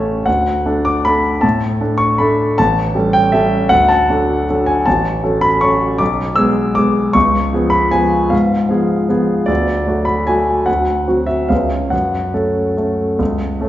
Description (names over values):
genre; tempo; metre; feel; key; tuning
classical, piano waltz; 137-168 BPM; 3/4; rubato; F# minor from 4.9 s; A4 = 438 Hz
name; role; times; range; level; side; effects
clear concert grand piano; solo; 0.0-13.7 s; A1 to E6; -13 LUFS; equal; none
room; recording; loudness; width
wet recital hall reverb, RT60 1.4 s; heard from further back in the room, nothing above 7.7 kHz; -13 LUFS; side -13 dB against mid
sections
0.0-13.7 A section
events
none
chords
0.3 D; 2.6 A7; 3.7 D; 4.9 F#m/A; 6.0 G#dim/B; 7.1 C#7; 9.5 D; 10.7 D7; 11.5 C#7; 11.9 F#m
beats
| 0.27 0.66 1.05 | 1.43 1.81 2.20 | 2.58 2.94 3.33 | 3.71 4.09 4.48 | 4.86 5.23 5.62 | 6.00 6.38 6.77 | 7.15 7.53 7.93 | 8.32 8.70 9.10 | 9.49 9.88 10.28 | 10.68 11.07 11.50 | 11.92 12.34 12.78 | 13.20 13.62